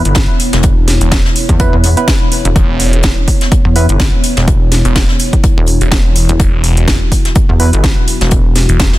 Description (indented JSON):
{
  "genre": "bass house",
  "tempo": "125 BPM",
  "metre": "4/4",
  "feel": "swing 56% on 16ths",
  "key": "unclear",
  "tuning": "A4 = 440 Hz",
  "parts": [
    { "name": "dark analog pad", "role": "sustained chords", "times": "0.0-9.0 s", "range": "B3 to C#5", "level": "-20 LUFS", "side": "left 1 dB", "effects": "chorus, sidechain pumping" },
    { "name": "percussive organ stab", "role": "stabs", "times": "0.0-3.9, 7.6-7.7 s", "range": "B3 to B4", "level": "-19 LUFS", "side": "right 3 dB", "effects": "chorus, sidechain pumping, ping-pong delay" },
    { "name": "pulsing pluck wobble bass", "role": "bass", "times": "0.0-8.7 s", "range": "E1 to E2", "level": "-12 LUFS", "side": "equal", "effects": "chorus, sidechain pumping" },
    { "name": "house drum kit", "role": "drums", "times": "0.1-8.9 s", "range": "hi-hat, snare drum", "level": "-18 LUFS", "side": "equal", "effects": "overdrive" },
    { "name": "jazz brush drum kit", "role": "drums", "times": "0.1-9.0 s", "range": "hi-hat, snare drum", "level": "-22 LUFS", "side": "left 3 dB", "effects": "high-pass filter on hats, soft clipping on snare, high-pass filter on snare, high-pass filter on room" },
    { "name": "electronic kick drum", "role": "drums", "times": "0.2-8.9 s", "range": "none", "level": "-12 LUFS", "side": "equal", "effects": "overdrive" },
    { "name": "phased detuned saw bass", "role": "bass", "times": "1.0-8.9 s", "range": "E1", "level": "-12 LUFS", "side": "equal", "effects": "phaser, tube saturation, sidechain pumping" }
  ],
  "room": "little or no reverb",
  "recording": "dense, heavily limited modern master",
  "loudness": "-8 LUFS",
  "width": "side -16 dB against mid",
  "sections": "0.0-9.0 A section",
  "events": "none",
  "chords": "0.0 E5"
}